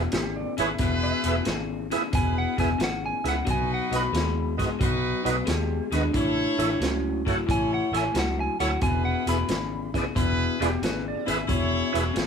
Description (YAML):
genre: electric blues shuffle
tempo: 90 BPM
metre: 4/4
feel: swing 67% on 8ths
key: E major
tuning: A4 = 444 Hz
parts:
  - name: tonewheel organ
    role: accompaniment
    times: 0.0-12.0 s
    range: D#4 to F#5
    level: -28 LUFS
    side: right 5 dB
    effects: slow rotary speaker, overdrive, chorus vibrato
  - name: electric guitar through a small old amp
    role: riff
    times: 0.0-12.3 s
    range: E2 to G#3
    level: -29 LUFS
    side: left 7 dB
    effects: none
  - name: clear horn section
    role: stabs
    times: 0.0-12.3 s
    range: D#4 to C#5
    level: -31 LUFS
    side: equal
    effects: none
  - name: vintage muted fingered electric bass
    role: bass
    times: 0.0-12.3 s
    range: E1 to D#2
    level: -30 LUFS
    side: right 1 dB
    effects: none
  - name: clean lap steel guitar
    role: second line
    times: 0.1-12.3 s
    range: C#4 to E5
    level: -32 LUFS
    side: right 4 dB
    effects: none
  - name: vintage drum kit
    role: drums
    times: 0.1-12.3 s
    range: hi-hat, kick drum, snare drum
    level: -30 LUFS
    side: right 1 dB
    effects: none
  - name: lightly driven lead guitar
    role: melody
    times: 2.1-11.2 s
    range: F#5 to B5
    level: -30 LUFS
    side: right 1 dB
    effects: none
room: light reverb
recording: band playing live in one room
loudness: -23 LUFS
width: side -6 dB against mid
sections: 0.0-12.3 A section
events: none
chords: 0.0 E; 3.5 B; 6.1 A; 8.8 E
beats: 0.13 | 0.80 1.46 2.13 2.80 | 3.47 4.14 4.81 5.48 | 6.14 6.81 7.48 8.15 | 8.82 9.49 10.15 10.82 | 11.49 12.15